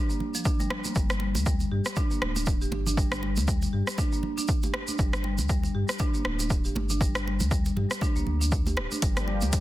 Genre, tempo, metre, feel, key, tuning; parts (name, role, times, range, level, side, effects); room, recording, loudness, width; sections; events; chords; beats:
afro house; 119 BPM; 4/4; swing 57% on 16ths; A4 = 442 Hz
marimba with medium mallets; arpeggios; 0.0-9.6 s; F3 to G4; -32 LUFS; left 1 dB; sidechain pumping, low-pass filter, tape echo
tube shaker; percussion; 0.1-9.6 s; -35 LUFS; right 3 dB
congas; percussion; 0.2-9.5 s; -36 LUFS; right 3 dB
electronic kick drum; drums; 0.5-9.6 s; -27 LUFS; equal; overdrive
deep house drum kit; drums; 0.7-9.6 s; hi-hat, rim click; -33 LUFS; equal; overdrive
warm sub bass; bass; 1.0-9.6 s; D1 to G2; -29 LUFS; equal; sidechain pumping
warm analog pad; sustained chords; 9.0-9.6 s; F3 to G4; -36 LUFS; equal; chorus, tremolo, sidechain pumping
small room ambience; dense, heavily limited modern master; -24 LUFS; side -15 dB against mid
0.0-9.6 A section
0.0 Gm7 (rootless); 1.0 Csus2 (rootless); 9.0 Gm7
0.45 | 0.96 1.46 1.97 2.47 | 2.98 3.48 3.98 4.49 | 4.99 5.50 6.00 6.50 | 7.01 7.51 8.02 8.52 | 9.03 9.53